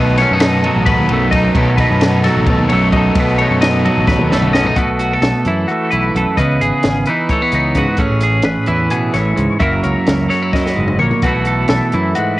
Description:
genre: math rock and midwest emo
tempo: 260 BPM (eighths)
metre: 7/8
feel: straight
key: unclear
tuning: A4 = 440 Hz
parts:
  - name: twelve-string electric guitar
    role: accompaniment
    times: 0.0-12.4 s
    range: F#2 to C#5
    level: -15 LUFS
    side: right 2 dB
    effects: cassette tape
  - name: twelve-string electric guitar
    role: arpeggios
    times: 0.0-12.4 s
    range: F#4 to E5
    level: -20 LUFS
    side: left 4 dB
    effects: cassette tape, tape echo
  - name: overdriven electric guitar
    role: riff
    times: 0.0-4.8 s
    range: B2 to A4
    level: -20 LUFS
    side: left 1 dB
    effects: cassette tape
  - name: growling fingered electric bass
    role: bass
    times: 0.0-12.1 s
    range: F#1 to C#3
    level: -18 LUFS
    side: equal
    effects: overdrive
  - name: compact cocktail drum kit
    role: drums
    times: 0.2-12.3 s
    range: hi-hat, kick drum, ride cymbal, snare drum, toms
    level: -19 LUFS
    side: equal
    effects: cassette tape
room: small room ambience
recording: home recording on cassette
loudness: -12 LUFS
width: side -17 dB against mid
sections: 0.0-4.8 A section; 4.8-12.4 B section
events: drum fill 4.1-4.8, 10.5-11.2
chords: 0.0 B7; 4.8 B7sus4; 6.4 C#m9; 8.0 Amaj9; 9.6 F#7; 11.2 B7sus4

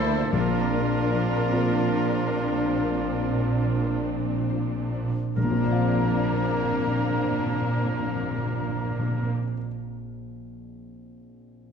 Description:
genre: cinematic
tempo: 48 BPM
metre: 4/4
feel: rubato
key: Bb major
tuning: A4 = 445 Hz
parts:
  - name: warm studio violin section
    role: melody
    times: 0.0-9.3 s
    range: Bb4 to C5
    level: -35 LUFS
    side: left 3 dB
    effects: none
  - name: bright concert flute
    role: second line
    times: 0.0-9.3 s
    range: Bb4 to Bb5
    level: -36 LUFS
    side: left 1 dB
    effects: none
  - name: clear oboe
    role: second line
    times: 0.0-9.3 s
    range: F4 to Bb4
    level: -34 LUFS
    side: right 2 dB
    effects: none
  - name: warm studio violin section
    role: second line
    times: 0.0-9.3 s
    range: Bb3 to E4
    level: -34 LUFS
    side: left 3 dB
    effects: none
  - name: felt-muted upright piano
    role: accompaniment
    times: 0.0-11.7 s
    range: Bb1 to F5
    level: -31 LUFS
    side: left 4 dB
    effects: none
  - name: warm studio viola section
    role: accompaniment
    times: 0.0-9.3 s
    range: Bb3 to D4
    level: -33 LUFS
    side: right 3 dB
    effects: none
  - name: mellow French horn section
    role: sustained chords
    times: 0.0-9.3 s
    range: Bb3 to D4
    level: -33 LUFS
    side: equal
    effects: none
  - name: concert harp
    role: arpeggios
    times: 0.0-9.6 s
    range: Bb2 to D5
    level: -34 LUFS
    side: left 9 dB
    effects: none
  - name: rich studio cello section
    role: bass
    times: 0.0-9.3 s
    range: D2 to Bb2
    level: -32 LUFS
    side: right 3 dB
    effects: none
  - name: warm studio double bass section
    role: bass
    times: 0.0-9.3 s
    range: Bb1 to D2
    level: -31 LUFS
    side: right 4 dB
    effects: none
  - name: timpani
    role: percussion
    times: 0.3-9.3 s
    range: Bb2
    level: -30 LUFS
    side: right 1 dB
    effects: none
room: wet scoring stage reverb, RT60 1.7 s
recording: dark, warm production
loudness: -23 LUFS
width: side -6 dB against mid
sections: 0.0-5.4 A section; 5.4-10.4 B section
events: slowing down 0.0-5.4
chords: 0.3 Bbadd9

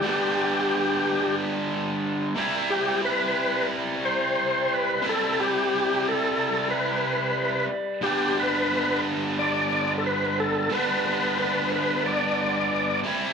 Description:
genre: rock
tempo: 90 BPM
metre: 4/4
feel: straight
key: G major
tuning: A4 = 444 Hz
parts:
  - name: overdriven tonewheel organ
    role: melody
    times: 0.0-13.0 s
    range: G4 to D5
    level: -25 LUFS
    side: left 1 dB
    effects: slow rotary speaker, chorus vibrato, plate reverb, slapback echo
  - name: distorted electric guitar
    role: riff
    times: 0.0-13.3 s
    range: G2 to E4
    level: -26 LUFS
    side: right 1 dB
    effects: overdrive, slapback echo
room: moderate club reverb, RT60 0.6 s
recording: live gig heard through the venue's PA, club reverb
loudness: -22 LUFS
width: side -6 dB against mid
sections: 0.0-13.3 A section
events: none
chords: 0.0 G; 2.4 C; 8.0 G

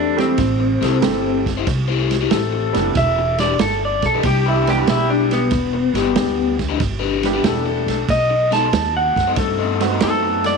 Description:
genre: electric blues shuffle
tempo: 93 BPM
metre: 4/4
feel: swing 68% on 8ths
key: E minor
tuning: A4 = 441 Hz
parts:
  - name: electric guitar through a small old amp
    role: melody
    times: 0.0-10.6 s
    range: B3 to A5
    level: -19 LUFS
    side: equal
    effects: harmonic tremolo
  - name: warm horn section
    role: stabs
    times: 0.0-10.6 s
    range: G3 to A4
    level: -25 LUFS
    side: left 13 dB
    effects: none
  - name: upright bass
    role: bass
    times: 0.0-10.6 s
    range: E1 to G2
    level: -23 LUFS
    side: equal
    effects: none
  - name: clear grand piano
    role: accompaniment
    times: 0.2-10.6 s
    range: G3 to A4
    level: -24 LUFS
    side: right 14 dB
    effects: none
  - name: vintage drum kit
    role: drums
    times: 0.2-10.5 s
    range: kick drum, ride cymbal, snare drum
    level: -23 LUFS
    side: right 6 dB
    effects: none
  - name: crunchy overdriven guitar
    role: riff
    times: 0.6-10.3 s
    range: E3 to C5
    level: -24 LUFS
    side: left 14 dB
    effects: phaser
room: light reverb, small room ambience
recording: 1960s-style stereo with parts hard left and right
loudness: -16 LUFS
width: side -4 dB against mid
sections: 0.0-10.6 A section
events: clean electric guitar solo 0.0-10.6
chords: 0.0 Am7; 3.0 Em7; 8.1 B7b9

